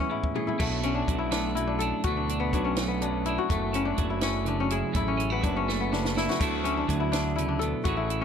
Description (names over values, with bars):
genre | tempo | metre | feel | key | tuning
math rock and midwest emo | 83 BPM (dotted quarters) | 6/8 | straight | unclear | A4 = 440 Hz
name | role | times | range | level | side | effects
twelve-string electric guitar | accompaniment | 0.0-8.2 s | F#2 to G#4 | -30 LUFS | right 10 dB | none
kora | arpeggios | 0.0-8.2 s | A3 to A4 | -29 LUFS | left 8 dB | tape echo
compact cocktail drum kit | drums | 0.2-8.2 s | crash cymbal, hi-hat, kick drum, snare drum, toms | -31 LUFS | equal | none
fuzz picked electric bass | bass | 0.6-8.2 s | F#1 to D2 | -32 LUFS | equal | overdrive
room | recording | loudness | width
light reverb | none | -25 LUFS | side -7 dB against mid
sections
0.6-8.2 A section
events
break 0.0-0.6; drum fill 0.0-0.6, 5.7-6.4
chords
0.0 Amaj7; 0.6 Bm7; 3.5 F#m9; 6.4 D69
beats
| 0.59 1.31 | 2.04 2.76 | 3.49 4.21 | 4.94 5.67 | 6.39 7.12 | 7.84